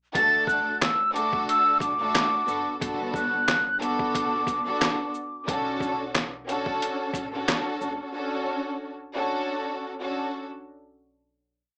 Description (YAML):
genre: hip hop, boom-bap hip-hop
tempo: 90 BPM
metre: 4/4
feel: swing 57% on 16ths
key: B minor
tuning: A4 = 440 Hz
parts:
  - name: mellow hollow concert flute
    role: melody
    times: 0.1-5.5 s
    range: D6 to A6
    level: -26 LUFS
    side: equal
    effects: none
  - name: warm studio string section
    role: accompaniment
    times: 0.1-10.4 s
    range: A3 to A4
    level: -31 LUFS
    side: equal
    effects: cassette tape
  - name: upright bass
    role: bass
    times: 0.1-8.0 s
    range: F#1 to D2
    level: -46 LUFS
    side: equal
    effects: none
  - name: trip hop sampler-style drum kit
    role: drums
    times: 0.1-8.0 s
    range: handclaps, hi-hat, kick drum, shaker, snare drum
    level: -30 LUFS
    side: equal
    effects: none
room: wet small room reverb, RT60 0.5 s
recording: rough home demo mix, small speaker sound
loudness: -26 LUFS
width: mono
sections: 0.1-10.8 hook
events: none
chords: 0.1 D; 2.5 Gmaj7; 5.5 Bm7